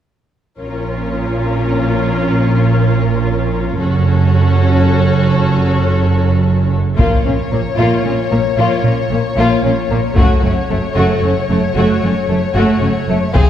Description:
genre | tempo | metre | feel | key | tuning
cinematic, epic orchestral film score | 113 BPM | 3/4 | straight | unclear | A4 = 436 Hz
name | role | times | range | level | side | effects
warm symphonic violin section | second line | 0.6-13.5 s | A3 to Db5 | -21 LUFS | left 3 dB | none
rich symphonic viola section | accompaniment | 0.6-13.5 s | A3 to Gb4 | -19 LUFS | equal | none
warm chamber double bass section | bass | 0.6-13.4 s | F1 to Bb1 | -17 LUFS | right 3 dB | none
warm symphonic cello section | bass | 0.6-13.4 s | F2 to Bb2 | -18 LUFS | right 1 dB | none
warm studio violin section | melody | 7.0-13.5 s | Db5 to F5 | -21 LUFS | left 6 dB | none
taiko ensemble | drums | 7.0-13.5 s | none | -15 LUFS | left 1 dB | none
room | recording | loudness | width
wet scoring stage reverb, RT60 2.0 s | heard from further back in the room | -12 LUFS | side -10 dB against mid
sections
0.6-7.0 A section; 7.0-13.5 B section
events
none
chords
0.6 Bbm; 3.8 Gbm; 7.0 Bbm; 10.2 Gbm

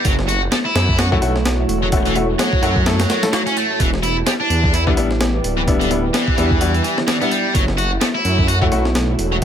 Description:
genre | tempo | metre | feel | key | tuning
breakbeat, breaks | 128 BPM | 4/4 | swing 57% on 16ths | unclear | A4 = 438 Hz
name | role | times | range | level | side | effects
distorted electric guitar | riff | 0.0-9.4 s | D3 to F#4 | -20 LUFS | left 1 dB | overdrive, dub echo
breakbeat sampler-style drum kit | drums | 0.0-9.4 s | hi-hat, kick drum, snare drum | -19 LUFS | equal | none
dark analog pad | sustained chords | 0.1-9.4 s | A3 to D5 | -25 LUFS | right 2 dB | chorus, sidechain pumping
detuned saw bass | bass | 0.1-9.4 s | D1 to F#2 | -20 LUFS | right 1 dB | none
bright baby grand piano | stabs | 1.1-8.8 s | G3 to A4 | -24 LUFS | left 4 dB | vintage 12-bit sampler grit, dub echo
room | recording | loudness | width
light reverb | none | -15 LUFS | side -9 dB against mid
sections
0.0-9.4 A section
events
none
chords
0.0 F#m7; 3.8 Em7; 7.5 F#m7

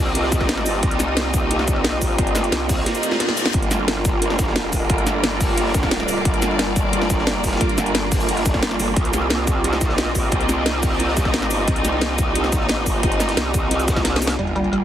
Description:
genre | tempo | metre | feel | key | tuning
dark technical drum and bass | 177 BPM | 4/4 | straight | unclear | A4 = 439 Hz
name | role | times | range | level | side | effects
sweeping resonant pad | sustained chords | 0.0-14.8 s | G3 to Eb5 | -27 LUFS | equal | chorus, sidechain pumping
growl bass | bass | 0.0-14.8 s | G1 to C2 | -23 LUFS | equal | chorus, tube saturation
bright studio string section | texture | 0.0-14.8 s | Bb3 to D5 | -24 LUFS | right 1 dB | sidechain pumping
crunchy breakbeat drum kit | drums | 0.1-14.4 s | hi-hat, ride cymbal, snare drum | -32 LUFS | equal | none
drum and bass drum kit | drums | 0.2-14.8 s | cabasa, hi-hat, snare drum | -24 LUFS | equal | low-pass filter on hats, low-pass filter on cymbals, low-pass filter on snare, low-pass filter on perc, low-pass filter on room
electronic kick drum | drums | 0.3-14.0 s | none | -22 LUFS | equal | overdrive
reverse cymbal and sub drop | sound effects | 3.0-3.5, 14.4-14.8 s | none | -28 LUFS | left 2 dB | none
analog pluck | arpeggios | 14.4-14.8 s | G3 | -21 LUFS | right 1 dB | chorus, sidechain pumping, ping-pong delay
room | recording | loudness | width
light reverb, studio reverb | heavily compressed radio sound, multiband compression | -17 LUFS | side -10 dB against mid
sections
0.0-14.4 A section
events
drop 0.0-14.4; reverse cymbal 3.0-3.5; drum fill 3.2-3.5, 14.0-14.4; impact 14.4-14.8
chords
0.0 Cm; 3.5 Gm; 9.0 Cm

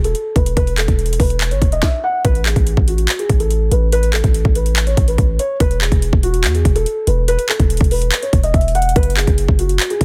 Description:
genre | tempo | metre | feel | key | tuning
hip hop, trap | 143 BPM | 4/4 | half-time | unclear | A4 = 437 Hz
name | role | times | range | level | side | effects
felt-muted upright piano | melody | 0.0-10.0 s | F#4 to F#5 | -23 LUFS | equal | digital delay
warm 808-style bass | bass | 0.0-10.0 s | E1 to E2 | -19 LUFS | equal | none
trap drum kit | drums | 0.0-10.0 s | handclaps, hi-hat, kick drum, snare drum | -18 LUFS | equal | none
room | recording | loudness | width
digital ambience | dense, heavily limited modern master | -16 LUFS | mono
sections
0.0-2.2 A section; 2.2-10.0 B section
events
none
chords
0.0 E5; 2.2 Asus2; 5.6 E5; 9.0 F#sus2

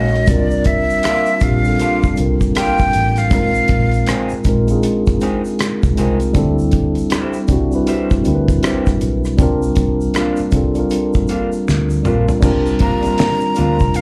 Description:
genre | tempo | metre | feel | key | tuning
R&B, neo-soul | 79 BPM | 4/4 | swing 61% on 16ths | C mixolydian | A4 = 440 Hz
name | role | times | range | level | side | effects
breathy jazz flute | melody | 0.0-4.3, 12.8-14.0 s | D5 to Bb5 | -21 LUFS | equal | slapback echo, plate reverb
electric guitar through a small old amp | second line | 0.0-13.8 s | G3 to Ab4 | -27 LUFS | equal | plate reverb, slapback echo
mellow tine electric piano | accompaniment | 0.0-14.0 s | G3 to Db5 | -20 LUFS | equal | plate reverb, slapback echo
vintage muted fingered electric bass | bass | 0.0-14.0 s | A1 to C3 | -20 LUFS | equal | none
damped 70s drum kit | drums | 0.1-14.0 s | crash cymbal, hi-hat, kick drum, rim click, snare drum, toms | -19 LUFS | equal | none
egg shaker and finger snaps | percussion | 0.3-14.0 s | none | -38 LUFS | equal | slapback echo
room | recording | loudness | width
light reverb | live gig heard through the venue's PA, club reverb | -16 LUFS | mono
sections
0.0-12.4 A section; 12.4-14.0 B section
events
drum fill 11.7-12.4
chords
0.3 C9sus4; 3.3 Bb9sus4; 6.3 D9sus4; 9.4 C9sus4

